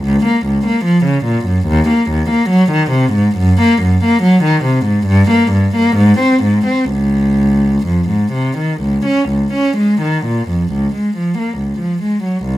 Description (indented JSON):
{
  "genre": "classical, baroque-style suite movement for unaccompanied cello",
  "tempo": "61-74 BPM",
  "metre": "4/4",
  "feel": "rubato",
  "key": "Db major from 3.4 s",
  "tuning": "A4 = 440 Hz",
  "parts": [
    { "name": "warm cello", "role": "solo", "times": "0.0-12.6 s", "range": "C2 to Db4", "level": "-11 LUFS", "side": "equal", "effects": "none" }
  ],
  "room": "light reverb",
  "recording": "close, detailed microphones",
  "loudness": "-11 LUFS",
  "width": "side -15 dB against mid",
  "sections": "0.0-10.7 A section; 10.7-12.6 B section",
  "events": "none",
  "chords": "none"
}